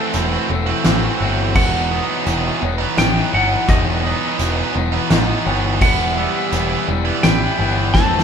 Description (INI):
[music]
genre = post-rock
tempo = 84 BPM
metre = 3/4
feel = straight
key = E harmonic minor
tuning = A4 = 441 Hz
[part]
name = clean lap steel guitar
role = melody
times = 0.0-8.2 s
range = D#5 to A5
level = -22 LUFS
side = left 1 dB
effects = none
[part]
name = electric guitar through a small old amp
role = arpeggios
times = 0.0-8.2 s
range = E2 to F#4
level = -27 LUFS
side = left 2 dB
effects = none
[part]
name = glockenspiel with rubber mallets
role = arpeggios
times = 0.0-7.9 s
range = D#6 to G6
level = -31 LUFS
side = right 3 dB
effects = none
[part]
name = cranked stack guitar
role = riff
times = 0.0-8.2 s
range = E3 to F#4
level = -25 LUFS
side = left 6 dB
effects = overdrive
[part]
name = tight distorted guitar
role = riff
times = 0.0-8.2 s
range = E3 to F#4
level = -21 LUFS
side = right 6 dB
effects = distortion
[part]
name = growling picked electric bass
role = bass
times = 0.1-8.2 s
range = E1 to A1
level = -21 LUFS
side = equal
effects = overdrive
[part]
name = loose indie drum kit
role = drums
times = 0.1-8.2 s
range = crash cymbal, hi-hat, kick drum, snare drum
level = -18 LUFS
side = equal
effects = none
[sound]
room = moderate large studio reverb, RT60 1.2 s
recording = band playing live in one room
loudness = -15 LUFS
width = side -7 dB against mid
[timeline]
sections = 0.0-8.2 A section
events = drum fill 7.9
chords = 0.0 F#dim/E; 1.6 B/E; 5.8 Em